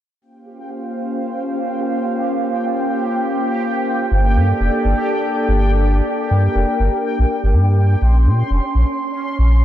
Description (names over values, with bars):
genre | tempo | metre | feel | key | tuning
IDM | 123 BPM | 4/4 | swing 62% on 16ths | unclear | A4 = 442 Hz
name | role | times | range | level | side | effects
warbly tape-like pad | sustained chords | 0.6-8.0 s | Bb3 to F5 | -21 LUFS | equal | chorus, built-in reverb, vintage 12-bit sampler grit
bubbling stepped-filter texture | texture | 0.2-9.6 s | Db4 to C6 | -23 LUFS | equal | chorus, built-in reverb
warm sub bass | bass | 4.1-9.6 s | F1 to Bb2 | -14 LUFS | equal | none
room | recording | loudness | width
little or no reverb | dry, gritty hardware recording | -15 LUFS | side -12 dB against mid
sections
0.2-8.0 A section; 8.0-9.6 B section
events
none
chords
0.2 Bbmadd9; 4.1 Gmadd9; 8.0 Bbmadd9